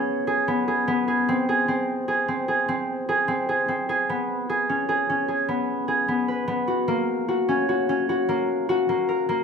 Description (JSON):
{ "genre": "contemporary instrumental, contemporary", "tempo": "150 BPM", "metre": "7/4", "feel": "straight", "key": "unclear", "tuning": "A4 = 440 Hz", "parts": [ { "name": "concert harp", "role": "solo", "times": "0.0-9.4 s", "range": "A#3 to B4", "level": "-21 LUFS", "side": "equal", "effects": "none" } ], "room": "moderate recital hall reverb, RT60 1.6 s", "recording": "minimal, uncompressed stereo recording", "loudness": "-21 LUFS", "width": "side -6 dB against mid", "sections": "0.0-4.1 A section; 4.1-9.4 B section", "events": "none", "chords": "0.0 G#madd11/B; 1.3 G#; 4.1 C#5; 6.9 F#", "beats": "0.08 0.48 0.88 | 1.28 1.69 2.09 2.49 2.89 3.29 3.69 | 4.09 4.49 4.89 5.29 5.70 6.09 6.50 | 6.90 7.30 7.70 8.10 8.50 8.90 9.30" }